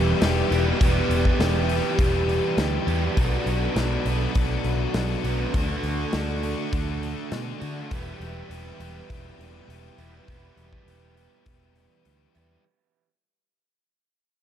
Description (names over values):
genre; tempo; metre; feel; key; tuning
rock, shoegaze and dream pop; 101 BPM; 4/4; straight; unclear; A4 = 440 Hz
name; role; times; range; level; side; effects
string machine, violins; sustained chords; 0.0-12.6 s; G4 to D6; -34 LUFS; left 2 dB; ensemble chorus
biting overdriven guitar; riff; 0.0-12.6 s; E2 to G4; -30 LUFS; left 12 dB; wide subtle chorus
overdriven electric guitar; riff; 0.0-12.6 s; E2 to G4; -29 LUFS; right 10 dB; reverse reverb
vintage muted picked electric bass; bass; 0.0-12.6 s; E1 to D3; -27 LUFS; equal; none
big rock drum kit; drums; 0.2-12.5 s; hi-hat, kick drum, snare drum; -27 LUFS; left 1 dB; none
room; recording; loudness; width
small room ambience; dark, warm production; -22 LUFS; side -10 dB against mid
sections
0.0-12.6 A section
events
fade-out 0.0-12.6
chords
0.0 Em7; 3.2 Bm7; 5.5 Dmaj7; 7.9 Em7